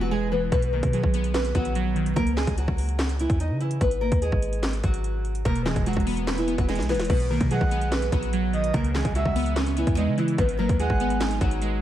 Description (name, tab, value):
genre	hip hop, trap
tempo	146 BPM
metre	4/4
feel	half-time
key	B major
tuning	A4 = 439 Hz
part	nylon-string guitar	melody	0.0-11.8 s	E3 to D#5	-28 LUFS	left 1 dB	ping-pong delay
part	glassy digital keys	accompaniment	0.0-2.2, 5.5-11.8 s	B2 to B4	-28 LUFS	right 2 dB	chorus
part	warm 808-style bass	bass	0.0-11.8 s	E1 to C#3	-26 LUFS	equal	none
part	trap drum kit	drums	0.5-11.7 s	crash cymbal, handclaps, hi-hat, kick drum, snare drum	-27 LUFS	equal	overdrive
part	breathy flute-like synth lead	second line	7.5-11.2 s	D#5 to F#5	-32 LUFS	right 2 dB	chorus, ping-pong delay
room	light reverb, digital ambience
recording	vinyl crackle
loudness	-22 LUFS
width	side -12 dB against mid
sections	0.0-7.1 A section; 7.1-11.8 B section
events	drum fill 6.7-7.1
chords	0.0 E; 0.5 B; 2.2 C#m; 3.8 G#m7; 5.5 E; 7.1 B; 8.7 C#m7; 10.4 G#m7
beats	0.11 | 0.52 0.93 1.34 1.75 | 2.17 2.58 2.99 3.40 | 3.81 4.22 4.63 5.04 | 5.45 5.86 6.27 6.68 | 7.10 7.51 7.92 8.33 | 8.74 9.15 9.56 9.97 | 10.38 10.79 11.21 11.62